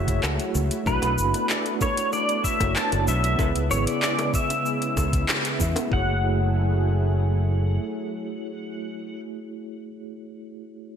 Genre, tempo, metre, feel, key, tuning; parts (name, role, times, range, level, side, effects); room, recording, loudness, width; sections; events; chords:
sunset chillout; 95 BPM; 4/4; straight; F# minor; A4 = 440 Hz
pedal steel guitar; melody; 0.0-9.2 s; B4 to A5; -28 LUFS; left 1 dB; analog chorus, ping-pong delay
mellow tine electric piano; accompaniment; 0.0-11.0 s; C#3 to E5; -30 LUFS; right 1 dB; medium stereo tremolo, auto-pan, vintage 12-bit sampler grit
lush unison pad; sustained chords; 0.0-9.2 s; C#3 to G#4; -33 LUFS; right 1 dB; chorus
modern bright fingered electric bass; bass; 0.0-7.8 s; F#1 to E2; -24 LUFS; equal
deep house drum kit; drums; 0.1-5.9 s; handclaps, hi-hat, shaker; -28 LUFS; left 1 dB; overdrive
electronic kick drum; drums; 0.1-6.0 s; -27 LUFS; equal
bongos; percussion; 0.2-5.9 s; -36 LUFS; left 4 dB
moderate lush hall reverb, RT60 2.1 s; bright 1980s-style digital production; -21 LUFS; side -8 dB against mid
0.0-5.9 A section; 5.9-8.4 B section
band accent 5.3-5.6
0.0 F#m9; 0.9 Bm11; 3.4 C#m7; 5.9 F#m9